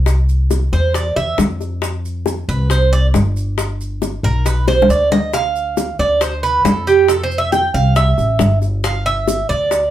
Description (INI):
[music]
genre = latin, Cuban son and guajira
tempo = 137 BPM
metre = 4/4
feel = straight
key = unclear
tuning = A4 = 440 Hz
[part]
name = upright bass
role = bass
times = 0.0-9.9 s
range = G1 to F2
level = -17 LUFS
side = equal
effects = none
[part]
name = bongos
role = percussion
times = 0.1-9.9 s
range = none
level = -20 LUFS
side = left 3 dB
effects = none
[part]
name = maracas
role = percussion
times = 0.1-9.9 s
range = none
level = -32 LUFS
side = right 4 dB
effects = none
[part]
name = Cuban tres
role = arpeggios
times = 0.7-9.9 s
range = G4 to G5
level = -16 LUFS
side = right 3 dB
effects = none
[sound]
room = wet studio ambience, RT60 0.5 s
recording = heard from further back in the room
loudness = -14 LUFS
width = side -12 dB against mid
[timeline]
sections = 0.0-9.9 A section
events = Cuban tres solo 0.0-9.9; drum fill 4.7-5.3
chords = 0.1 Dm9 (rootless); 1.8 F5; 3.6 G; 5.3 Dm; 7.1 Fmaj7; 8.8 G5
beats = | 0.07 0.51 0.95 1.39 | 1.83 2.27 2.70 3.14 | 3.58 4.02 4.46 4.90 | 5.34 5.78 6.21 6.65 | 7.09 7.53 7.96 8.40 | 8.84 9.28 9.71